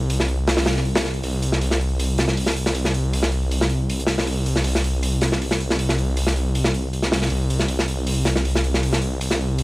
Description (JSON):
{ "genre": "drum and bass, jungle", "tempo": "158 BPM", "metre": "4/4", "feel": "straight", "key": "unclear", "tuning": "A4 = 440 Hz", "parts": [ { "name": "detuned saw bass", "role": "bass", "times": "0.0-9.6 s", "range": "C2", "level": "-21 LUFS", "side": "equal", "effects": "none" }, { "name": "crunchy breakbeat drum kit", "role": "drums", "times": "0.1-9.6 s", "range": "hi-hat, snare drum", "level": "-22 LUFS", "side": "equal", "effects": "high-pass filter on hats, high-pass filter on snare, high-pass filter on room" } ], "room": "little or no reverb", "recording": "vinyl crackle", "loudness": "-19 LUFS", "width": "side -21 dB against mid", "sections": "0.0-9.6 A section", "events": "none", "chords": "none" }